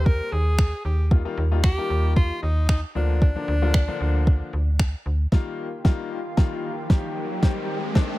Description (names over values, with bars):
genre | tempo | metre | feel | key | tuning
dance-pop | 114 BPM | 4/4 | straight | Eb major | A4 = 440 Hz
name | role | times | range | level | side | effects
edgy alto saxophone | melody | 0.0-4.8 s | D4 to Bb4 | -30 LUFS | equal | tape echo
clear baby grand piano | accompaniment | 0.0-8.2 s | C3 to G4 | -30 LUFS | left 5 dB | sidechain pumping
slap-like FM bass | bass | 0.0-5.3 s | D2 to Eb2 | -22 LUFS | equal | sidechain pumping
smooth R&B drum kit | drums | 0.1-8.1 s | finger snaps, kick drum, snare drum | -18 LUFS | equal | overdrive
lush unison pad | sustained chords | 5.3-8.2 s | Eb3 to G4 | -33 LUFS | equal | chorus, sidechain pumping
riser | sound effects | 6.1-8.2 s | none | -34 LUFS | right 1 dB | none
room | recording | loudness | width
little or no reverb | none | -20 LUFS | side -17 dB against mid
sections
0.0-5.3 A section; 5.3-8.2 B section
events
build-up 5.3-8.2; drum fill 5.3-8.2; filter sweep 5.3-8.2; riser 6.1-8.2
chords
0.0 Cm7/Eb; 1.1 Ebadd9; 3.0 Bb/D; 5.3 Ebadd9; 7.4 Cm7/Eb